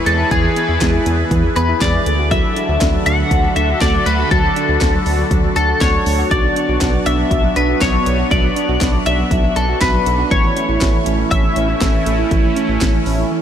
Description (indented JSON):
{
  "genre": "synth-pop",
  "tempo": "120 BPM",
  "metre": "4/4",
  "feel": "straight",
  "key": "unclear",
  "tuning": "A4 = 440 Hz",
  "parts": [
    { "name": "twelve-string electric guitar", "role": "melody", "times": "0.0-13.4 s", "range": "G#4 to F#5", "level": "-18 LUFS", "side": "left 2 dB", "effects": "analog chorus, ping-pong delay, shimmer reverb" },
    { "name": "sweeping resonant pad", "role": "sustained chords", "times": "0.0-13.4 s", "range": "D3 to B4", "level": "-21 LUFS", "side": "right 1 dB", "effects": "chorus, shimmer reverb" },
    { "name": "soft round pluck", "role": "arpeggios", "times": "0.0-13.4 s", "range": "E3 to F#4", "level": "-22 LUFS", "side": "right 4 dB", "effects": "chorus, ping-pong delay, shimmer reverb" },
    { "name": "round analog bass", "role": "bass", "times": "0.1-13.2 s", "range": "A1 to E2", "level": "-19 LUFS", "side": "equal", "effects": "none" },
    { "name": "house drum kit", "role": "drums", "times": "0.1-13.2 s", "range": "handclaps, hi-hat, kick drum, snare drum", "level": "-20 LUFS", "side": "equal", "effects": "overdrive" }
  ],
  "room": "moderate huge ambient reverb, RT60 6.3 s",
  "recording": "dreamy mix soaked in reverb",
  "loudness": "-13 LUFS",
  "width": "side -9 dB against mid",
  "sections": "0.0-13.4 A section",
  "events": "none",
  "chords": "0.0 E; 2.1 D; 6.3 Bm; 10.3 A"
}